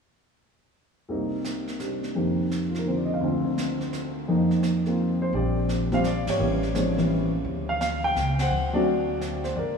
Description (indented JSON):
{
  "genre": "jazz piano trio",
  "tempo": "170 BPM",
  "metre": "3/4",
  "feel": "swing 65% on 8ths",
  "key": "Bb major",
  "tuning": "A4 = 439 Hz",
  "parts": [
    { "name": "warm baby grand piano", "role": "melody", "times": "1.1-9.8 s", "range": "C2 to G5", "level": "-24 LUFS", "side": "equal", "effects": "none" },
    { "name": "jazz brush drum kit", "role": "drums", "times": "1.1-9.8 s", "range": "brushed snare drum, hi-hat, ride cymbal, snare drum", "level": "-38 LUFS", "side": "right 2 dB", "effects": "none" },
    { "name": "upright bass", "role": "bass", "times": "5.3-9.8 s", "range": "G1 to D2", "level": "-29 LUFS", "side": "equal", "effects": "none" }
  ],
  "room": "wet cathedral reverb, RT60 5.2 s",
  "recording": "in a vast, echoing space, studio ambience",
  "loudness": "-23 LUFS",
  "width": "side -5 dB against mid",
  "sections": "1.1-5.3 A section; 5.3-9.8 B section",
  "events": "band accent 6.2, 8.3",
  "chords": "1.1 Cm7; 2.2 F7sus4; 3.2 Dm7; 4.3 F7sus4; 5.3 Bb6; 6.4 A7; 7.5 Db(#11); 8.5 D7"
}